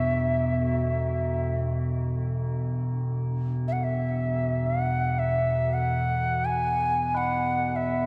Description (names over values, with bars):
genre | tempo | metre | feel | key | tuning
world meditative, free-time meditation music | free time | none | none | E major pentatonic | A4 = 440 Hz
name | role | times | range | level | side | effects
mellow Native American-style cedar flute | melody | 0.0-8.1 s | E5 to G#5 | -29 LUFS | equal | delay
metallic inharmonic drone | drone | 0.0-8.1 s | E2 to B2 | -29 LUFS | equal | chorus, built-in reverb
tubular bells | texture | 0.0-8.1 s | B4 to C#5 | -42 LUFS | equal | none
room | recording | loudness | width
wet church reverb, RT60 3.0 s | dark, warm production | -27 LUFS | mono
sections
0.0-8.1 A section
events
none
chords
none